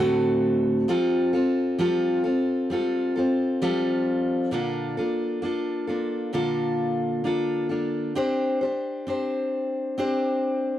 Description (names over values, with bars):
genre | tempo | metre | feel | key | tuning
pop | 66 BPM | 4/4 | straight | unclear | A4 = 444 Hz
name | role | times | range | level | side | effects
fingerpicked steel-string acoustic guitar | solo | 0.0-10.8 s | A2 to C5 | -22 LUFS | equal | none
room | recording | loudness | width
light reverb | dry, close 1970s-style studio recording | -22 LUFS | side -12 dB against mid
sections
0.0-4.5 A section; 4.5-10.8 B section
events
none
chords
0.0 D7/A; 0.9 Fadd9; 4.5 Bbmaj7; 8.2 Csus2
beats
| 0.89 1.80 2.71 3.62 | 4.53 5.44 6.34 7.25 | 8.16 9.07 9.98